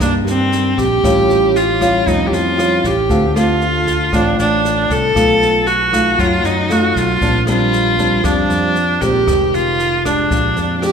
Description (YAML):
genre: bossa nova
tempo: 116 BPM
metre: 4/4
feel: straight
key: Bb major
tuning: A4 = 440 Hz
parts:
  - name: clear viola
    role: melody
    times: 0.0-10.9 s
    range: C4 to A4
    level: -15 LUFS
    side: right 1 dB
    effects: none
  - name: nylon-string guitar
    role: accompaniment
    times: 0.0-10.9 s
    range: F2 to G4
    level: -18 LUFS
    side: left 1 dB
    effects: none
  - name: fingered electric bass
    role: bass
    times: 0.0-10.9 s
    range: F1 to G2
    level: -21 LUFS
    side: equal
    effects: none
  - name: jazz brush drum kit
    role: drums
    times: 0.0-10.9 s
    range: kick drum, rim click, snare drum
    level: -24 LUFS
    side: equal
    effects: none
room: moderate scoring stage reverb, RT60 1.7 s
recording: recorded in a church or concert hall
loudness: -12 LUFS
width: side -6 dB against mid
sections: 0.0-10.9 A section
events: none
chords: 0.0 Cm9; 1.0 Aaug7; 3.1 Dm7; 5.2 B7#11; 7.2 Bb69; 9.3 Fm7; 10.3 Bb6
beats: 0.00 0.51 | 1.03 1.54 2.06 2.58 | 3.09 3.61 4.12 4.64 | 5.15 5.67 6.18 6.70 | 7.21 7.73 8.24 8.76 | 9.27 9.79 10.30 10.82